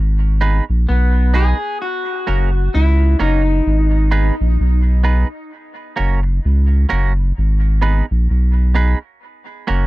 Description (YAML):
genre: reggae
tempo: 65 BPM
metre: 4/4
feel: swing 58% on 16ths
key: G# minor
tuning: A4 = 439 Hz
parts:
  - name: warm sub bass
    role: bass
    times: 0.0-9.9 s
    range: F#1 to C#2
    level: -14 LUFS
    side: equal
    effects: none
  - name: semi-hollow electric guitar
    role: accompaniment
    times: 0.4-9.9 s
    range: A#3 to B4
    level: -24 LUFS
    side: right 6 dB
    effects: dub echo
  - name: electric guitar at the edge of break-up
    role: melody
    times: 0.9-4.1 s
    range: B3 to G#4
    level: -22 LUFS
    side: left 2 dB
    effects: dub echo
room: little or no reverb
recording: dry, close 1970s-style studio recording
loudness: -14 LUFS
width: side -19 dB against mid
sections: 0.0-9.9 A section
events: none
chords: 0.0 G#m; 1.8 F#; 3.7 G#m; 5.5 F#; 7.4 G#m; 9.2 F#